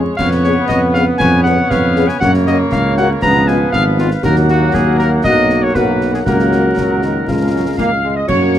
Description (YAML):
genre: military-style march for wind band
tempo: 118 BPM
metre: 2/4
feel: straight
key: unclear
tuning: A4 = 440 Hz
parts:
  - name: warm woodwind section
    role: second line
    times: 0.0-8.6 s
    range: Ab4 to F#5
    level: -21 LUFS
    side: equal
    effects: none
  - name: dark French horn section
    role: accompaniment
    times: 0.0-8.6 s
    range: F#3 to G#4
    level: -18 LUFS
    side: left 3 dB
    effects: none
  - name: bright trombone section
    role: sustained chords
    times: 0.0-8.6 s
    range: Db3 to B3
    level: -20 LUFS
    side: right 1 dB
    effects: none
  - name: mellow tuba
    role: bass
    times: 0.0-8.6 s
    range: G#1 to F#2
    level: -16 LUFS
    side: right 1 dB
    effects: none
  - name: warm cornet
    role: melody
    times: 0.2-8.6 s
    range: E#4 to A#5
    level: -18 LUFS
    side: left 2 dB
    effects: none
  - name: concert snare drum, clash cymbals and concert bass drum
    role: drums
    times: 0.2-8.6 s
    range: none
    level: -23 LUFS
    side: left 1 dB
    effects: none
  - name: warm euphonium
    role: second line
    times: 8.3-8.6 s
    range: F#4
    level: -18 LUFS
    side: right 5 dB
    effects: none
room: little or no reverb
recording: close, detailed microphones, vinyl crackle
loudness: -11 LUFS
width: side -11 dB against mid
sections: 0.0-8.3 A section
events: none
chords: 0.2 C#7/E#; 2.2 F#; 3.2 C#7; 4.2 D#m; 5.3 B5; 6.3 F#/C#; 7.3 C#